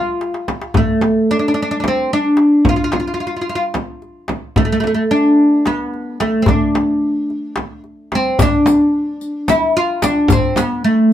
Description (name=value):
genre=Turkish makam ensemble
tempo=220 BPM (eighths)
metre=7/8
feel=straight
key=D makam huseyni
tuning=A4 = 440 Hz
part: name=oud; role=melody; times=0.0-11.1 s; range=A3 to F4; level=-14 LUFS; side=equal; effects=none
part: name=darbuka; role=percussion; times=0.2-10.7 s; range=none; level=-20 LUFS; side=left 4 dB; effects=none
part: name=frame drum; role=percussion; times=0.5-10.7 s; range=none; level=-20 LUFS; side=right 2 dB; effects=none
part: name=riq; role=percussion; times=8.4-10.7 s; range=none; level=-26 LUFS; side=left 3 dB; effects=none
room=light reverb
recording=band playing live in one room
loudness=-13 LUFS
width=side -11 dB against mid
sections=0.0-8.4 A section; 8.4-11.1 B section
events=drum fill 0.2-0.7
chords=none